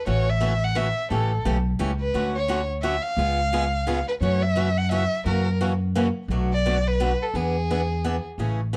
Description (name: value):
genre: acoustic string swing (jazz manouche)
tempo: 173 BPM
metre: 3/4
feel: swing 60% on 8ths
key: A major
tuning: A4 = 440 Hz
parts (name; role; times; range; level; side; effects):
- warm violin; melody; 0.0-8.3 s; G#4 to F#5; -29 LUFS; equal; none
- picked swing-style acoustic guitar; accompaniment; 0.1-8.8 s; B2 to G#4; -30 LUFS; equal; none
- upright bass; bass; 0.1-8.8 s; A1 to F#2; -27 LUFS; equal; none
room: light reverb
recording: dark, warm production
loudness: -24 LUFS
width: mono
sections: 0.1-8.4 A section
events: none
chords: 0.1 A6; 1.1 A7; 2.1 Dmaj7; 3.2 C#7; 4.2 F#m7; 5.3 F#7; 6.3 Bm7; 7.3 E7